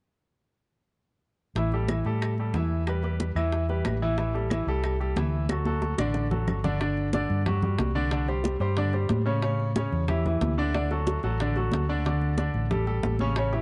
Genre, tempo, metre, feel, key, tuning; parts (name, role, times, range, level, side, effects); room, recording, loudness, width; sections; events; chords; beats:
latin, salsa; 183 BPM; 4/4; straight; A4 = 440 Hz
clear concert grand piano; accompaniment; 1.6-13.6 s; C#3 to E5; -31 LUFS; equal
hollow-body short-scale fingered electric bass; bass; 1.6-13.6 s; G1 to A2; -30 LUFS; equal
bongos; percussion; 1.6-13.6 s; -40 LUFS; equal
congas; percussion; 1.6-13.6 s; -36 LUFS; equal
claves; percussion; 1.9-6.6 s; -46 LUFS; equal
light reverb; dark, warm production, nothing above 10.4 kHz; -27 LUFS; mono
1.6-6.8 A section; 6.8-13.6 B section
drum fill 5.5-6.8
1.6 A5; 2.9 Em; 4.2 Am7; 5.5 D; 6.8 G5; 8.1 Csus2; 9.4 A7; 10.7 D; 12.1 Dsus4
| 1.56 1.89 2.22 2.54 | 2.87 3.20 3.53 3.86 | 4.18 4.51 4.84 5.17 | 5.50 5.82 6.15 6.48 | 6.81 7.14 7.46 7.79 | 8.12 8.45 8.78 9.11 | 9.43 9.76 10.09 10.42 | 10.75 11.07 11.40 11.73 | 12.06 12.38 12.71 13.04 | 13.37